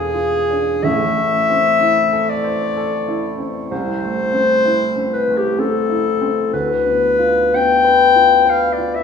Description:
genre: classical, romantic duo for clarinet and grand piano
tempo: 56-65 BPM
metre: 3/4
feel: rubato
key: A minor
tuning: A4 = 440 Hz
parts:
  - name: mellow clarinet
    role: melody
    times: 0.0-9.0 s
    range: G4 to G5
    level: -15 LUFS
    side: left 4 dB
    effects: none
  - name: dark baby grand piano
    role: accompaniment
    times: 0.0-9.0 s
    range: E1 to C5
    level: -20 LUFS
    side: right 1 dB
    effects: none
room: wet recital hall reverb, RT60 1.4 s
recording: recorded in a church or concert hall, small room ambience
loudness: -14 LUFS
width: side -6 dB against mid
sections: 0.0-9.0 A section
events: none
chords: 0.0 E7b9; 0.8 Am; 3.7 Am/C; 6.5 Bdim/D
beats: | 0.84 1.81 2.77 | 3.71 4.65 5.58 | 6.52 7.54 8.48

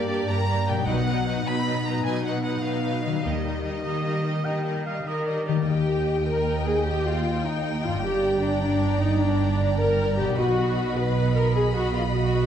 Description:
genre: cinematic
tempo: 102 BPM (dotted quarters)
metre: 12/8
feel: straight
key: Eb major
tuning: A4 = 438 Hz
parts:
  - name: warm symphonic violin section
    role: melody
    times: 0.0-12.5 s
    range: D5 to B5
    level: -34 LUFS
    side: left 2 dB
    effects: none
  - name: warm symphonic violin section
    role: second line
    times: 0.0-12.5 s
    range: Bb4 to G5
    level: -33 LUFS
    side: left 1 dB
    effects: none
  - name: rich symphonic viola section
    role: accompaniment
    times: 0.0-12.5 s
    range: F#3 to B4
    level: -31 LUFS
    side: equal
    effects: none
  - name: mellow French horn section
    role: sustained chords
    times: 0.0-12.5 s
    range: Bb3 to B4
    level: -27 LUFS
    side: left 1 dB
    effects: none
  - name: concert harp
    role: arpeggios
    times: 0.0-12.5 s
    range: G2 to D#5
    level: -32 LUFS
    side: left 7 dB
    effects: none
  - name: rich symphonic cello section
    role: bass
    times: 0.0-12.5 s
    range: Eb2 to Eb3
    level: -28 LUFS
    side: right 3 dB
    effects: none
  - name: clear symphonic double bass section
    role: bass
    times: 0.9-12.5 s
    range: G1 to Eb2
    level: -28 LUFS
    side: right 3 dB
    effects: none
  - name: warm oboe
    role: second line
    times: 3.9-5.7 s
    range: D5 to G5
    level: -34 LUFS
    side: equal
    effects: none
room: wet scoring stage reverb, RT60 1.9 s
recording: none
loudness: -22 LUFS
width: side -9 dB against mid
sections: 0.0-5.7 A section; 5.7-12.5 A section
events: none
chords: 0.0 Gm; 0.9 B; 3.2 Eb; 8.0 Gm; 10.4 B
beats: 0.29 | 0.87 1.46 2.05 2.64 | 3.25 3.85 4.46 5.06 | 5.67 6.26 6.85 7.44 | 8.03 8.61 9.20 9.79 | 10.38 10.96 11.55 12.15

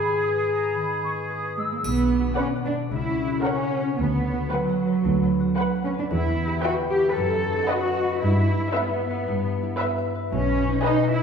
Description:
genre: cinematic, playful, whimsical film cue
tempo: 113 BPM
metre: 4/4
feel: straight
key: B minor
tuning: A4 = 439 Hz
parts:
  - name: clear oboe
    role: second line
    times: 0.0-1.5 s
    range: G#4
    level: -30 LUFS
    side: equal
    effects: none
  - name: mellow small flute group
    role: second line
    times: 0.0-1.8 s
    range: A#5 to E6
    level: -30 LUFS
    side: right 1 dB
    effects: none
  - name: warm clarinet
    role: second line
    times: 0.0-1.3 s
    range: G#4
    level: -26 LUFS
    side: left 3 dB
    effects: none
  - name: concert harp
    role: arpeggios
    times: 0.0-11.2 s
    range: E2 to G5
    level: -27 LUFS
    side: left 4 dB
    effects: none
  - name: muted studio cello section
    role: bass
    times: 1.6-11.2 s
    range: F#3 to B4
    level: -24 LUFS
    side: right 2 dB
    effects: none
  - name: muted studio double bass section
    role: bass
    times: 1.8-10.7 s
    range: B1 to G2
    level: -28 LUFS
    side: right 2 dB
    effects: none
  - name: triangle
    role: percussion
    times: 1.8-2.9 s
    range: none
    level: -40 LUFS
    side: equal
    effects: none
  - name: muted studio violin section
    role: melody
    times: 2.4-11.2 s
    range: E5 to G#5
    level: -34 LUFS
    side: left 2 dB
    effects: none
  - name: muted studio violin section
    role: second line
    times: 2.4-11.2 s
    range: B4 to E5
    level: -34 LUFS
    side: equal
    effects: none
  - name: muted studio viola section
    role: accompaniment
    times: 2.4-11.2 s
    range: A#4 to B4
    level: -33 LUFS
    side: right 2 dB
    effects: none
room: wet scoring stage reverb, RT60 1.8 s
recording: heard from further back in the room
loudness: -21 LUFS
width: side -6 dB against mid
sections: 0.0-1.8 A section; 1.8-11.2 B section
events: none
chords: 0.0 G#m; 1.8 Bm; 2.9 F#7/C#; 4.0 Bm/D; 6.1 Em; 7.2 B7/F#; 8.2 Em/G; 10.3 G#m/B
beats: 0.20 0.76 1.30 | 1.84 2.38 2.92 3.45 | 3.98 4.51 5.04 5.58 | 6.10 6.63 7.16 7.69 | 8.22 8.75 9.28 9.80 | 10.32 10.85

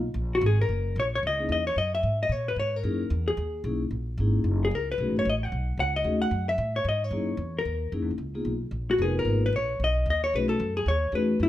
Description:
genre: jazz, small-group swing and bop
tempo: 224 BPM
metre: 4/4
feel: swing 59% on 8ths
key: F# mixolydian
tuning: A4 = 440 Hz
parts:
  - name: upright bass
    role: bass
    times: 0.0-11.5 s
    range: E#1 to A#2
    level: -28 LUFS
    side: equal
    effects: none
  - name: vintage hollow-body jazz guitar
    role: melody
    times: 0.3-11.5 s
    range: E4 to F#5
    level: -27 LUFS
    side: left 2 dB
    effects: none
  - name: vibraphone with soft mallets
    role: accompaniment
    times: 1.4-11.5 s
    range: A3 to B4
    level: -29 LUFS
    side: left 2 dB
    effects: none
room: light reverb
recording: none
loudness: -24 LUFS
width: side -13 dB against mid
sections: 0.7-11.5 A section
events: none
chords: 0.0 C#7(no3) (rootless); 0.7 F#13; 5.0 B13; 7.1 F#13; 8.2 C#13 (rootless); 10.3 B13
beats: 0.15 0.42 | 0.69 0.96 1.23 1.49 | 1.76 2.03 2.30 2.57 | 2.83 3.10 3.37 3.64 | 3.91 4.17 4.44 4.71 | 4.98 5.25 5.51 5.78 | 6.05 6.32 6.58 6.85 | 7.12 7.39 7.65 7.92 | 8.19 8.46 8.72 8.99 | 9.26 9.53 9.79 10.06 | 10.33 10.59 10.86 11.13 | 11.39

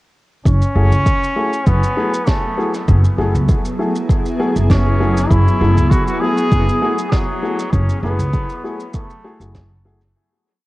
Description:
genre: ambient dub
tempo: 99 BPM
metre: 4/4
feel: swing 54% on 16ths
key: F# minor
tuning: A4 = 442 Hz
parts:
  - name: brilliant trombone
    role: melody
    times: 0.5-9.5 s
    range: F#3 to G#4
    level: -22 LUFS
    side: equal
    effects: dub echo
  - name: granular cloud pad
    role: sustained chords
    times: 1.9-10.2 s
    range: F#3 to G#4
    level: -22 LUFS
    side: equal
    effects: built-in reverb, cassette tape
  - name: upright bass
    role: bass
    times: 0.5-10.1 s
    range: F#1 to C#2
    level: -15 LUFS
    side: equal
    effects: none
  - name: electronic kick drum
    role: drums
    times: 0.5-9.7 s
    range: none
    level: -16 LUFS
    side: equal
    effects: cassette tape
  - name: shaker and snare drum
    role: drums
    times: 0.5-10.1 s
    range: none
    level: -30 LUFS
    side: right 2 dB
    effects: cassette tape, dub echo
  - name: dark upright piano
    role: stabs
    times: 0.8-10.0 s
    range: A3 to G#4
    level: -24 LUFS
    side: left 2 dB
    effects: cassette tape, dub echo
room: light reverb, studio ambience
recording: home recording on cassette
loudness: -13 LUFS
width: side -19 dB against mid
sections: 0.5-10.2 groove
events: fade-out 6.9-10.2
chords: 0.5 F#m9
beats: | 0.46 1.06 1.67 2.27 | 2.88 3.48 4.09 4.70 | 5.30 5.91 6.51 7.12 | 7.73 8.33 8.94 9.55

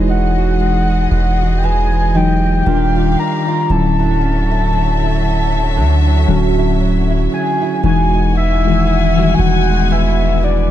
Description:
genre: R&B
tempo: 58 BPM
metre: 4/4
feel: swing 58% on 16ths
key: E major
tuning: A4 = 441 Hz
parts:
  - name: muted felt-like synth keys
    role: accompaniment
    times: 0.0-10.7 s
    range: D3 to C#5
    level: -17 LUFS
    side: left 2 dB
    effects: chorus
  - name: dark studio string section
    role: sustained chords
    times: 0.0-10.7 s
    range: D3 to G#5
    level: -24 LUFS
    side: left 2 dB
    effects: none
  - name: nylon-string guitar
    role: arpeggios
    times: 0.0-10.7 s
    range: D3 to F#4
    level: -24 LUFS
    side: right 10 dB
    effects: none
  - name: long sustained 808-style bass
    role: bass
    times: 0.0-10.7 s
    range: D1 to D2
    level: -15 LUFS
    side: equal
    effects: none
  - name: soft octave-layered synth lead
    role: melody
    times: 0.1-10.7 s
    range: D5 to A#5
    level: -20 LUFS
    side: left 2 dB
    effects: chorus, ping-pong delay
room: studio reverb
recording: dark, warm production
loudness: -12 LUFS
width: side -12 dB against mid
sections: 0.0-7.8 A section; 7.8-10.7 B section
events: none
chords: 0.0 Emaj9; 2.7 D#maj9; 3.7 Dmaj9; 7.8 Emaj9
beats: 0.59 1.63 2.66 | 3.70 4.73 5.77 6.80 | 7.84 8.87 9.90

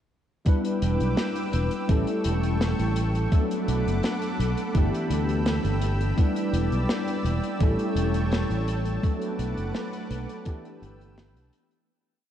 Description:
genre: vaporwave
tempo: 84 BPM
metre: 4/4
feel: straight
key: G lydian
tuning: A4 = 439 Hz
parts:
  - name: bell-like tine electric piano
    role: accompaniment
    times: 0.4-11.9 s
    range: E3 to B4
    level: -28 LUFS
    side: equal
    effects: ensemble chorus, analog delay
  - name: lush unison pad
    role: sustained chords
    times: 0.5-11.9 s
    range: A4 to E6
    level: -34 LUFS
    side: equal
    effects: chorus
  - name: electronic kick drum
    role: drums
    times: 0.5-10.6 s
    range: none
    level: -22 LUFS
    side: equal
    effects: none
  - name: modern studio drum kit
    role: drums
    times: 0.5-11.9 s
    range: hi-hat, snare drum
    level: -34 LUFS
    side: left 1 dB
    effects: none
  - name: fingered electric bass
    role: bass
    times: 0.8-11.5 s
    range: E1 to D2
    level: -26 LUFS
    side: equal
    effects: none
room: moderate huge ambient reverb, RT60 7.5 s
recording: dreamy mix soaked in reverb, cassette tape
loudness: -23 LUFS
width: side -10 dB against mid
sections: 0.5-11.9 groove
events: fade-out 8.1-11.9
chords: 0.5 Em7; 1.9 A7; 3.3 Bm7; 4.7 G69; 6.2 Em7; 7.6 A7; 9.0 Bm7; 10.5 G69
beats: | 0.46 1.18 1.89 2.61 | 3.32 4.04 4.75 5.46 | 6.18 6.89 7.61 8.32 | 9.04 9.75 10.46 11.18

